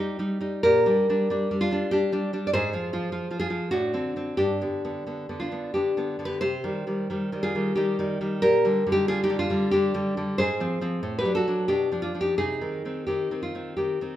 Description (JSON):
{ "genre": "romantic piece for solo classical guitar", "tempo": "81-104 BPM", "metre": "3/4", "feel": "rubato", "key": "C minor", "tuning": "A4 = 441 Hz", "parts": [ { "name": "nylon-string guitar", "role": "solo", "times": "0.0-14.2 s", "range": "G2 to D5", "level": "-23 LUFS", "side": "equal", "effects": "none" } ], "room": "moderate recital hall reverb, RT60 1.5 s", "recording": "minimal, uncompressed stereo recording", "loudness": "-23 LUFS", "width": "side -12 dB against mid", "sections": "0.0-14.2 A section", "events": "none", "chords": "0.0 Cm (rootless); 0.6 Gm/Bb; 2.5 Fm/Ab; 3.7 D7/A; 4.4 G; 6.4 Cm; 8.4 Gm/Bb; 10.4 Fm/Ab; 11.0 D/A; 11.7 G7/B; 12.4 Cm" }